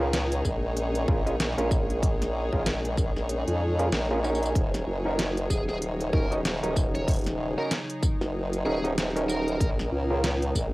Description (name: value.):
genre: glitch hop.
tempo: 95 BPM.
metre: 4/4.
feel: swing 58% on 16ths.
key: Eb minor pentatonic.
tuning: A4 = 438 Hz.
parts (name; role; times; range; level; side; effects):
warbly tape-like pad; sustained chords; 0.0-10.7 s; Bb2 to Eb4; -38 LUFS; equal; chorus, built-in reverb, sidechain pumping.
overdriven clav; stabs; 0.0-10.3 s; Db4 to Eb5; -31 LUFS; right 1 dB; vintage 12-bit sampler grit, sidechain pumping, tape echo.
formant-sweep wobble bass; bass; 0.0-10.7 s; Eb1 to F2; -28 LUFS; equal; chorus, tube saturation.
warm studio string section; texture; 0.0-10.7 s; Eb4 to Db5; -38 LUFS; left 1 dB; sidechain pumping.
dubstep drum kit; drums; 0.1-10.7 s; hi-hat, snare drum, tambourine; -31 LUFS; equal; cassette tape.
electronic kick drum; drums; 0.4-10.7 s; none; -26 LUFS; equal; cassette tape.
bluesy overdriven lead guitar; melody; 5.5-9.7 s; Ab4 to Db5; -36 LUFS; equal; distortion, cassette tape, tape echo.
room: light reverb.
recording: home recording on cassette.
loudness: -24 LUFS.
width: side -20 dB against mid.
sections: 0.0-10.7 A section.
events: none.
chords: 0.0 Bbm7; 4.6 Ebm7; 9.6 Bbm7.